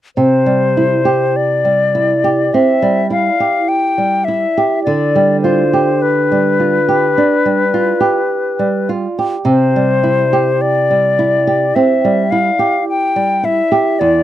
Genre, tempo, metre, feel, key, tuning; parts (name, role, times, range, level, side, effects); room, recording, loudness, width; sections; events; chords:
romantic duo for flute and classical guitar; 52 BPM; 4/4; rubato; C major; A4 = 440 Hz
silver concert flute; melody; 0.2-14.2 s; B4 to G5; -14 LUFS; left 4 dB
nylon-string guitar; accompaniment; 0.2-14.2 s; E2 to G4; -14 LUFS; right 3 dB
light reverb; dry, close 1970s-style studio recording; -11 LUFS; side -12 dB against mid
0.2-14.2 A section
0.2 C; 4.9 G7/D; 9.5 C